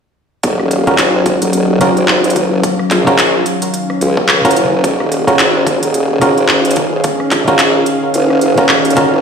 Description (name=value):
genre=glitch hop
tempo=109 BPM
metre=4/4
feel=swing 58% on 16ths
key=Eb minor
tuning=A4 = 440 Hz
part: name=warm analog pad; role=sustained chords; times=0.4-9.2 s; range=Eb3 to F5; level=-16 LUFS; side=equal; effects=chorus, sidechain pumping
part: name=formant-sweep wobble bass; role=bass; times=0.4-9.2 s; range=Eb1 to Db2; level=-14 LUFS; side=left 1 dB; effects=chorus, high-pass filter
part: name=dubstep drum kit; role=drums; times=0.4-9.1 s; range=handclaps, hi-hat, rim click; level=-16 LUFS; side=equal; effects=small room reverb
part: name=electronic kick drum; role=drums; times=0.4-8.7 s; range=none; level=-19 LUFS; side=equal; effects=high-pass filter on kick, small room reverb
part: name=muted clav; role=stabs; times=0.9-9.2 s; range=Db4 to Bb4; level=-16 LUFS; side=right 1 dB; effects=vintage 12-bit sampler grit, sidechain pumping, low-pass filter, digital delay
room=moderate plate reverb, RT60 1.5 s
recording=played on a big sound system in a bare room, stone room reverb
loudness=-10 LUFS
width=side -6 dB against mid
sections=0.4-9.2 A section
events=build-up 0.4-9.2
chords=0.4 Ebm9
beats=| 0.44 0.99 1.54 2.09 | 2.64 3.19 3.74 4.29 | 4.84 5.39 5.94 6.49 | 7.04 7.59 8.15 8.70